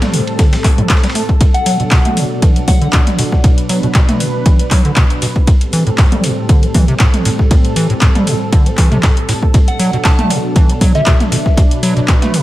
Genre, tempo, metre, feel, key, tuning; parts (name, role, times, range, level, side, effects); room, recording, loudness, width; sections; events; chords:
acid house; 118 BPM; 4/4; swing 54% on 16ths; B phrygian; A4 = 440 Hz
lush unison pad; sustained chords; 0.0-12.4 s; A2 to B4; -20 LUFS; equal; chorus, sidechain pumping
acid bass, square; riff; 0.0-12.4 s; A2 to A3; -17 LUFS; equal; tube saturation
dusty soul sampler-style drum kit; drums; 0.0-12.4 s; hi-hat, ride cymbal, snare drum; -28 LUFS; right 2 dB; sidechain pumping on cymbals, high-pass filter on cymbals, high-pass filter on snare, sidechain pumping on hats, high-pass filter on hats
electro analog drum machine; drums; 0.0-12.4 s; handclaps, hi-hat, toms; -18 LUFS; equal
electronic kick drum; drums; 0.4-12.2 s; -10 LUFS; equal; overdrive
soft synth bell; melody; 1.5-3.1, 9.7-11.7 s; E5 to A5; -22 LUFS; left 1 dB; chorus, phaser, dub echo
light reverb, digital ambience; -10 LUFS; side -16 dB against mid
0.0-12.4 A section
filter sweep on acid bass 0.0-12.4
0.0 Am7; 1.4 Bm7; 5.5 Am7; 9.5 Bm7